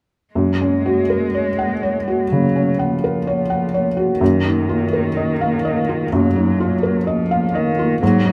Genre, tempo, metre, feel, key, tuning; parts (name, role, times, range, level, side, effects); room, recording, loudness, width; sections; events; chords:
neoclassical piano and strings; 63 BPM; 4/4; rubato; F# major; A4 = 445 Hz
warm cello; second line; 0.3-8.3 s; D#3 to G#3; -24 LUFS; equal
felt-muted upright piano; accompaniment; 0.4-8.3 s; F#2 to F#5; -19 LUFS; equal
moderate studio reverb, RT60 0.6 s; -18 LUFS; mono
0.4-8.3 A section
0.4 F#; 4.2 D#madd9/F#